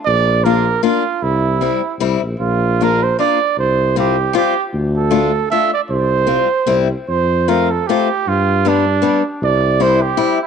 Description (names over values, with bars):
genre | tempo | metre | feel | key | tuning
alpine folk, alpine dance band | 155 BPM | 3/4 | swing 54% on 8ths, rubato | unclear | A4 = 439 Hz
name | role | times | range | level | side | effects
mellow trumpet | melody | 0.1-10.5 s | D4 to E5 | -17 LUFS | right 8 dB | none
mellow tuba | bass | 0.1-10.2 s | Bb1 to G2 | -18 LUFS | left 1 dB | none
picked old ladder-braced acoustic guitar | accompaniment | 0.5-10.4 s | G3 to F4 | -18 LUFS | left 10 dB | none
room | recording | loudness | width
wet spring reverb, RT60 1.6 s, small room ambience | 1960s-style stereo with parts hard left and right, nothing above 10.8 kHz | -13 LUFS | side -7 dB against mid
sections
0.0-10.5 A section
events
none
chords
0.1 Bb; 1.2 C; 2.4 Bb; 3.6 Csus4; 4.7 Dm; 5.9 Csus4; 6.7 C; 7.1 F; 8.3 G; 9.4 C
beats
| 0.07 0.46 0.84 | 1.23 1.62 2.01 | 2.41 2.80 3.20 | 3.58 3.97 4.35 | 4.74 5.12 5.51 | 5.90 6.29 6.68 | 7.08 7.48 7.88 | 8.27 8.65 9.04 | 9.42 9.81 10.20